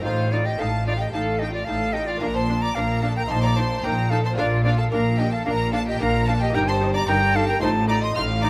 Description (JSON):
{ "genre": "classical, baroque-style concerto movement with solo episodes", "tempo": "111 BPM", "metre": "4/4", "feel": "straight", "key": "Bb major", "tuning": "A4 = 439 Hz", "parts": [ { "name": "bright concert flute", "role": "melody", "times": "0.0-8.5 s", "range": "C5 to C6", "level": "-28 LUFS", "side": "equal", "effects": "none" }, { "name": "rich symphonic violin section", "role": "melody", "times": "0.0-8.5 s", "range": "F5 to F6", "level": "-33 LUFS", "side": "equal", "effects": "none" }, { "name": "dark chamber violin section", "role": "second line", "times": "0.0-8.5 s", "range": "F4 to F5", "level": "-32 LUFS", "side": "equal", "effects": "none" }, { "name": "lute", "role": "accompaniment", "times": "0.0-8.5 s", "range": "G2 to G4", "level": "-36 LUFS", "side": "equal", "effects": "none" }, { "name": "rich chamber viola section", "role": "accompaniment", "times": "0.0-8.5 s", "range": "D4 to Eb4", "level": "-35 LUFS", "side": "equal", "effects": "none" }, { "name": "clear chamber cello section", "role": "bass", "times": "0.0-8.5 s", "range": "G2 to Bb2", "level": "-28 LUFS", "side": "equal", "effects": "none" }, { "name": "rich chamber double bass section", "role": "bass", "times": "0.0-8.5 s", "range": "G1 to Bb1", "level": "-28 LUFS", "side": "equal", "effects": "none" } ], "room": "light reverb", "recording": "none", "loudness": "-22 LUFS", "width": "mono", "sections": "0.0-8.5 A section", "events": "none", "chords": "0.0 F7/A; 2.2 Bb; 3.3 F7/Bb; 4.4 Bb; 6.5 Eb/G; 7.6 F7/A" }